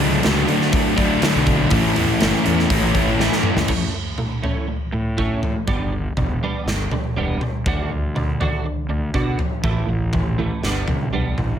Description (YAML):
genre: quiet-loud alternative rock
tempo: 121 BPM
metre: 4/4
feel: straight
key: A mixolydian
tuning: A4 = 443 Hz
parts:
  - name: crunchy overdriven guitar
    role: riff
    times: 0.0-3.7 s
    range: A2 to E4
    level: -22 LUFS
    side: right 11 dB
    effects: none
  - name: crunchy overdriven guitar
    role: riff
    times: 0.0-3.7 s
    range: A2 to E4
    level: -23 LUFS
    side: left 1 dB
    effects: none
  - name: thick fuzz guitar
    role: riff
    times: 0.0-3.7 s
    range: A2 to E4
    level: -21 LUFS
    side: left 10 dB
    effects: distortion
  - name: fuzz fingered electric bass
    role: bass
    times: 0.0-11.6 s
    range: E1 to B2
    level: -24 LUFS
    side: equal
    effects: overdrive
  - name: big rock drum kit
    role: drums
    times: 0.0-11.5 s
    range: crash cymbal, hi-hat, kick drum, snare drum, toms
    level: -22 LUFS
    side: equal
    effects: none
  - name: twelve-string electric guitar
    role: arpeggios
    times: 3.7-11.6 s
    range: A2 to F#4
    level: -26 LUFS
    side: right 4 dB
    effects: ensemble chorus
room: light reverb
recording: none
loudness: -18 LUFS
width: side -9 dB against mid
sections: 0.0-3.7 A section; 3.7-11.6 B section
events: drum fill 3.2-3.7; half time 3.7-11.6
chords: 0.0 D; 1.7 A; 5.7 G; 7.7 D; 9.6 A5; 10.6 Gadd9